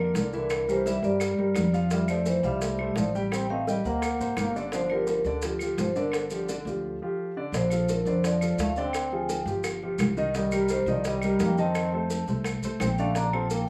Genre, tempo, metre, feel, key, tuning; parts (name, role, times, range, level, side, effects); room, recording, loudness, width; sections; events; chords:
Afro-Cuban jazz; 171 BPM; 4/4; straight; G minor; A4 = 440 Hz
vibraphone with medium mallets; melody; 0.0-13.7 s; A4 to Bb5; -33 LUFS; equal; plate reverb
clear trombone; second line; 0.0-13.7 s; D3 to D4; -35 LUFS; equal
warm baby grand piano; accompaniment; 0.0-13.6 s; D3 to G5; -33 LUFS; equal
upright bass; bass; 0.0-13.6 s; G1 to G2; -32 LUFS; equal
bongos; percussion; 0.1-13.7 s; -36 LUFS; equal
maracas; percussion; 0.2-13.7 s; -45 LUFS; equal
claves; percussion; 0.5-13.5 s; -42 LUFS; equal
moderate club reverb, RT60 0.5 s; small room ambience; -27 LUFS; mono
0.0-7.5 A section; 7.5-13.7 B section
break 6.8-7.5
0.0 Bb; 0.5 C9; 1.9 Fmaj9; 3.3 Am7b5; 4.0 Daug7; 4.7 G7sus2; 7.5 Bbmaj7; 8.9 Dm7b5; 9.6 Cmadd11/G; 10.3 Cm7; 11.8 F7; 13.2 Bbmaj7